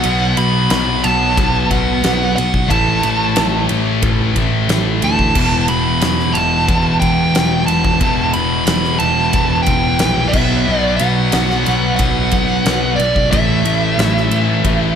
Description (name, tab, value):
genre	hard rock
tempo	90 BPM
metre	4/4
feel	straight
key	unclear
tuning	A4 = 440 Hz
part	dark smooth lead guitar	melody	0.0-15.0 s	D5 to B5	-18 LUFS	right 2 dB	overdrive, tape echo
part	high-gain distorted guitar	riff	0.0-15.0 s	E2 to B3	-21 LUFS	left 10 dB	distortion
part	scooped high-gain guitar	riff	0.0-15.0 s	E2 to B3	-21 LUFS	left 1 dB	distortion
part	sludgy distorted guitar	riff	0.0-15.0 s	E2 to B3	-22 LUFS	right 8 dB	overdrive
part	modern bright picked electric bass	bass	0.0-15.0 s	E1 to D2	-20 LUFS	left 1 dB	none
part	huge arena drum kit	drums	0.0-14.8 s	crash cymbal, kick drum, ride cymbal, snare drum	-20 LUFS	equal	none
room	little or no reverb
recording	none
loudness	-12 LUFS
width	side -8 dB against mid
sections	0.0-15.0 A section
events	none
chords	0.0 B5; 2.7 A5; 5.4 Em; 10.3 B5; 13.3 A5